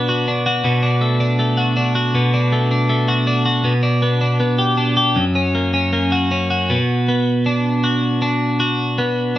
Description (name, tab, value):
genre	pop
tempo	79 BPM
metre	4/4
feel	straight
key	B minor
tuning	A4 = 436 Hz
part	twelve-string electric guitar	solo	0.0-9.4 s	F#2 to G4	-15 LUFS	equal	none
room	moderate studio reverb, RT60 0.8 s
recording	band playing live in one room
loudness	-15 LUFS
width	side -14 dB against mid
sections	0.0-6.7 A section; 6.7-9.4 B section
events	none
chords	0.0 Bm; 0.6 D/B; 3.7 G/B; 5.2 F#; 6.7 Bm